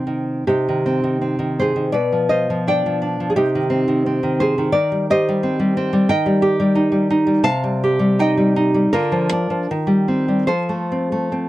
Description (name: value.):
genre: romantic piece for solo classical guitar.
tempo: 70-90 BPM.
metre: 2/4.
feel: rubato.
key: C minor.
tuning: A4 = 440 Hz.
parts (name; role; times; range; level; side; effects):
nylon-string guitar; solo; 0.0-11.5 s; B2 to A5; -16 LUFS; equal; none.
room: little or no reverb.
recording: dry, close 1970s-style studio recording.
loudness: -16 LUFS.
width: side -16 dB against mid.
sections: 0.5-11.5 A section.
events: none.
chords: 0.5 Cm; 1.9 G7/B; 3.4 Cm; 4.7 Cm/Eb; 6.1 Eb; 7.5 Cm; 8.9 Bb/D; 9.7 Cm7/Eb; 10.5 F.